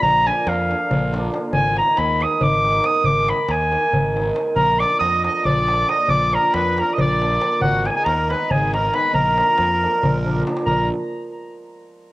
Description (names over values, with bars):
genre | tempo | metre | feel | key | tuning
balkan folk, Balkan wedding band | 275 BPM (eighths) | 7/8 | straight | unclear | A4 = 440 Hz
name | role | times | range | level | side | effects
warm clarinet | melody | 0.0-10.9 s | F5 to Eb6 | -19 LUFS | equal | cassette tape
cimbalom | accompaniment | 0.0-10.9 s | D3 to Eb4 | -25 LUFS | right 2 dB | cassette tape
fuzz fingered electric bass | bass | 0.0-10.9 s | Ab1 to F2 | -25 LUFS | equal | overdrive
darbuka | percussion | 0.0-10.9 s | none | -25 LUFS | left 1 dB | none
accordion | second line | 4.5-10.9 s | Gb4 to Eb5 | -28 LUFS | right 2 dB | light tremolo tuning, cassette tape
room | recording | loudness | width
light reverb | home recording on cassette | -16 LUFS | side -17 dB against mid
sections
0.0-10.7 A section; 10.7-12.1 B section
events
drum fill 10.1-10.7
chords
0.0 Bb; 1.5 Abm; 4.6 Bb; 7.6 Abm; 9.1 Bb